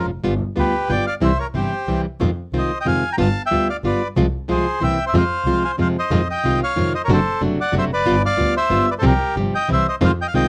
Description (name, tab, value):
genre	tango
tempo	184 BPM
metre	3/4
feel	rubato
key	F minor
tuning	A4 = 442 Hz
part	bandoneon	melody	0.0-10.5 s	G4 to Bb5	-23 LUFS	equal	none
part	nylon-string guitar	accompaniment	0.0-10.5 s	C3 to G4	-23 LUFS	equal	none
part	rich double bass	bass	0.0-10.5 s	F1 to F2	-25 LUFS	equal	none
room	light reverb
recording	close, detailed microphones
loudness	-19 LUFS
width	mono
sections	0.0-6.1 A section; 6.1-10.5 B section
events	none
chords	0.3 G7; 1.2 C; 2.2 Fm7; 3.2 G7; 4.2 Fm/C; 4.8 C7; 5.1 Fm; 6.1 Fm7; 7.1 D7/F#; 8.1 G7; 9.0 Csus4; 9.7 C